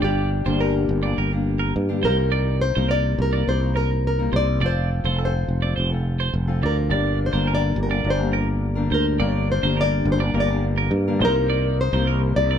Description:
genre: acoustic pop.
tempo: 105 BPM.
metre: 4/4.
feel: straight.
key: G minor.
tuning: A4 = 440 Hz.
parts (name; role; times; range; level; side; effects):
nylon-string guitar; melody; 0.0-12.6 s; G4 to D5; -25 LUFS; left 2 dB; none.
fingerpicked steel-string acoustic guitar; accompaniment; 0.0-12.6 s; G2 to Bb4; -27 LUFS; left 5 dB; none.
twelve-string electric guitar; arpeggios; 0.0-12.6 s; A4 to D5; -28 LUFS; right 7 dB; spring reverb.
sustaining fretless electric bass; bass; 0.0-12.6 s; F1 to G2; -22 LUFS; equal; none.
clear upright piano; accompaniment; 6.9-12.6 s; Bb3 to D5; -32 LUFS; left 3 dB; none.
room: light reverb.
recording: band playing live in one room.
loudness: -19 LUFS.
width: side -8 dB against mid.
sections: 0.0-12.6 A section.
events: none.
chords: 0.0 Gm; 2.0 Cm7; 4.6 F; 6.9 Gm; 11.2 Cm7.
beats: | 0.03 0.60 1.17 1.75 | 2.32 2.90 3.47 4.04 | 4.62 5.19 5.77 6.34 | 6.91 7.49 8.06 8.63 | 9.21 9.78 10.36 10.93 | 11.50 12.08.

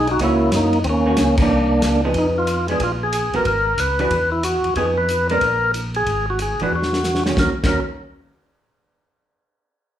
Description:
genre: soul jazz organ trio.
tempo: 184 BPM.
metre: 4/4.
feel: swing 64% on 8ths.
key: Eb minor.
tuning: A4 = 440 Hz.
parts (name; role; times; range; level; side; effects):
percussive tonewheel organ; melody; 0.0-7.8 s; Bb3 to Cb5; -19 LUFS; equal; slow rotary speaker.
tonewheel organ; bass; 0.0-7.8 s; Ab1 to Gb2; -24 LUFS; equal; overdrive, chorus vibrato, slow rotary speaker.
warm soul drum kit; drums; 0.1-7.7 s; crash cymbal, hi-hat, kick drum, ride cymbal, snare drum; -25 LUFS; left 1 dB; none.
vintage hollow-body jazz guitar; accompaniment; 0.2-7.8 s; Eb3 to Bb4; -23 LUFS; right 2 dB; none.
room: wet large studio reverb, RT60 0.8 s.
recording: band playing live in one room.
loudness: -16 LUFS.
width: side -11 dB against mid.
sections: 0.0-2.1 A section; 2.1-7.4 B section; 7.4-8.7 C section.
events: band accent 1.3; drum fill 6.7-7.4.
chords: 0.0 Ebm7; 1.5 Cm11; 2.1 Fm7b5; 2.8 Abm13/Bb; 3.5 Absus2; 4.1 Esus2; 4.8 Fm7b5; 5.4 Absus2/Bb; 6.1 Abm7b5; 6.7 Esus2; 7.4 Ebm7.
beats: 0.19 0.52 | 0.84 1.17 1.50 1.82 | 2.15 2.47 2.80 3.13 | 3.45 3.78 4.11 4.43 | 4.76 5.09 5.41 5.74 | 6.07 6.39 6.72 7.04 | 7.37 7.70.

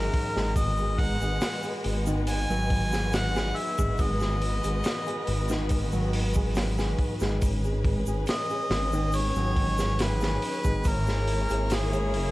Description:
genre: trip hop.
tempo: 70 BPM.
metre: 4/4.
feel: straight.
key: G# minor.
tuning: A4 = 435 Hz.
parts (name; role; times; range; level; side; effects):
warm harmonica; melody; 0.0-12.3 s; G#4 to G#5; -31 LUFS; equal; tape echo.
dark symphonic violin section; sustained chords; 0.0-12.3 s; G#3 to E5; -35 LUFS; left 1 dB; vintage 12-bit sampler grit.
felt-muted upright piano; arpeggios; 0.0-12.3 s; D#3 to G#4; -33 LUFS; equal; vintage 12-bit sampler grit, tape echo.
dark detuned saw bass; bass; 0.0-12.3 s; F#1 to G#1; -28 LUFS; equal; tube saturation.
crunchy breakbeat drum kit; drums; 0.1-12.3 s; hi-hat, kick drum, snare drum; -30 LUFS; equal; none.
tube shaker; percussion; 0.6-12.1 s; none; -46 LUFS; right 4 dB; none.
room: small room ambience.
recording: vinyl crackle.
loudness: -24 LUFS.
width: side -18 dB against mid.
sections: 0.0-12.3 A section.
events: none.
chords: 0.0 A#m7b5/G#; 0.6 G#m7; 7.4 G#madd11; 10.8 A#m7b5/G#.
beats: | 0.56 1.42 2.28 3.13 | 3.99 4.85 5.71 6.56 | 7.42 8.28 9.13 9.99 | 10.85 11.71.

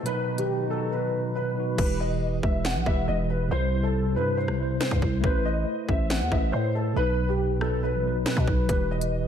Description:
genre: hip hop, drill.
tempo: 139 BPM.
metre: 4/4.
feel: half-time.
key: E harmonic minor.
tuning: A4 = 440 Hz.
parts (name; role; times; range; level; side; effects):
dark concert grand piano; melody; 0.0-9.3 s; G4 to F#5; -29 LUFS; equal; ensemble chorus, low-pass filter, diffuse ambient delay.
mellow tine electric piano; accompaniment; 0.0-9.3 s; B2 to D#5; -29 LUFS; equal; medium stereo tremolo, low-pass filter.
mellow woodwind section; sustained chords; 0.0-1.8 s; B2 to D#4; -37 LUFS; right 1 dB; low-pass filter.
drill drum kit; drums; 0.1-9.1 s; crash cymbal, hi-hat, kick drum, rim click, snare drum; -27 LUFS; equal; none.
growling 808-style bass; bass; 1.8-9.3 s; E1 to B2; -27 LUFS; equal; none.
room: moderate lush hall reverb, RT60 1.5 s.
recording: dreamy mix soaked in reverb.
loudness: -23 LUFS.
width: side -8 dB against mid.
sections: 0.0-1.8 A section; 1.8-9.3 B section.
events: filter sweep 0.0-1.8; drums muted 0.9-1.8; hi-hats muted 1.8-8.7.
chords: 0.1 B; 1.8 Em; 3.5 C; 5.2 Amadd9; 7.0 B; 8.7 Em.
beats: | 0.06 0.49 0.92 1.35 | 1.78 2.22 2.65 3.08 | 3.51 3.94 4.37 4.81 | 5.24 5.67 6.10 6.53 | 6.96 7.40 7.83 8.26 | 8.69 9.12.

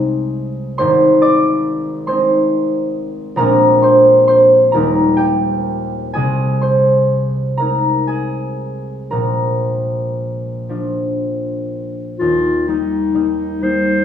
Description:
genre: classical, romantic duo for clarinet and harp.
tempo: 38-48 BPM (dotted quarters).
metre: 6/8.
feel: rubato.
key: Eb major.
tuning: A4 = 443 Hz.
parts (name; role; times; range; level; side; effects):
concert harp; accompaniment; 0.0-14.0 s; Eb1 to Eb6; -14 LUFS; equal; none.
mellow clarinet; melody; 12.2-14.0 s; Eb4 to C5; -16 LUFS; left 4 dB; none.
room: moderate recital hall reverb, RT60 1.4 s.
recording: studio ambience.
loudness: -13 LUFS.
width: side -9 dB against mid.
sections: 0.0-12.2 A section; 12.2-14.0 B section.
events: none.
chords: 0.0 Ab/C; 0.8 Ab; 3.4 Bb9; 4.7 Eb; 6.2 Ab/C; 9.1 Bb; 12.2 Eb.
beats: | 0.80 2.08 | 3.40 4.75 | 6.16 7.60 | 9.12 10.69 | 12.20 13.61.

